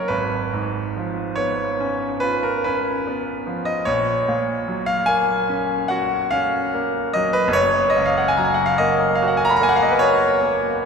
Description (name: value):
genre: classical, romantic nocturne for solo piano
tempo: 48 BPM (dotted quarters)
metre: 9/8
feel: rubato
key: F# major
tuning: A4 = 442 Hz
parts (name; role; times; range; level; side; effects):
- bright concert grand piano; solo; 0.0-10.9 s; F#1 to B5; -18 LUFS; equal; none
room: wet church reverb, RT60 3.2 s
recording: minimal, uncompressed stereo recording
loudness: -18 LUFS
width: side -6 dB against mid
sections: 0.0-10.9 A section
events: none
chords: 0.1 C#7/G#; 3.9 F#/A#